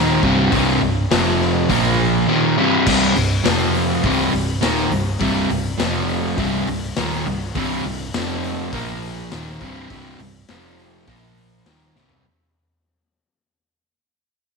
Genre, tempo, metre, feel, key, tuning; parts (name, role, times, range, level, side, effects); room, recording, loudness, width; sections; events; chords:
blues rock power trio and southern rock; 102 BPM; 4/4; straight; A4 = 440 Hz
overdriven semi-hollow guitar; riff; 0.0-12.2 s; C2 to Bb3; -18 LUFS; equal
vintage muted fingered electric bass; bass; 0.0-12.2 s; C1 to Bb1; -28 LUFS; right 1 dB
raw garage drum kit; drums; 0.2-12.2 s; crash cymbal, hi-hat, kick drum, snare drum, toms; -25 LUFS; left 4 dB
moderate echo chamber reverb, RT60 1.7 s, studio ambience; 1960s-style stereo; -16 LUFS; side -4 dB against mid
0.0-2.9 A section; 2.9-12.2 A section
fade-out 2.9-12.2; drum fill 12.0
0.0 C5; 1.1 F5; 1.7 Bb5; 2.3 C5; 3.5 F5; 4.0 C5; 5.8 F5; 6.4 C5; 8.1 F5; 8.7 Bb5; 9.3 C5; 10.5 F5; 11.1 Bb5; 11.7 C5